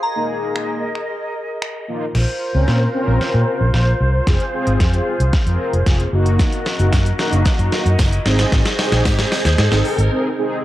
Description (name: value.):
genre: dance-pop.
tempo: 113 BPM.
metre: 4/4.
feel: straight.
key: unclear.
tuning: A4 = 440 Hz.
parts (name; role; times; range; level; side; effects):
glassy synth bell; melody; 0.0-1.6 s; Bb5; -27 LUFS; equal; chorus, cassette tape, tape echo.
large flute ensemble; sustained chords; 0.0-10.4 s; F4 to Eb5; -24 LUFS; equal; sidechain pumping, cassette tape.
mellow synth brass; accompaniment; 0.2-10.6 s; Bb3 to Bb4; -23 LUFS; left 1 dB; chorus, sidechain pumping, cassette tape.
deep house drum kit; drums; 0.6-10.1 s; crash cymbal, finger snaps, hi-hat, kick drum, shaker, snare drum; -19 LUFS; equal; cassette tape.
vintage muted fingered electric bass; bass; 2.1-10.1 s; F1 to Bb2; -16 LUFS; equal; sidechain pumping.
riser; sound effects; 5.1-10.1 s; none; -29 LUFS; equal; none.
tambourine; percussion; 6.9-9.2 s; none; -34 LUFS; right 5 dB; none.
room: light reverb.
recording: home recording on cassette.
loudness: -15 LUFS.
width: side -14 dB against mid.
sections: 0.0-2.1 A section; 2.1-10.6 B section.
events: build-up 2.1-10.6; drum fill 2.1-10.1; riser 5.1-10.6; break 10.1-10.6.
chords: 0.0 Absus2; 2.1 Bbmadd9; 4.3 Fm; 6.1 Ebm/Gb; 8.3 Ab.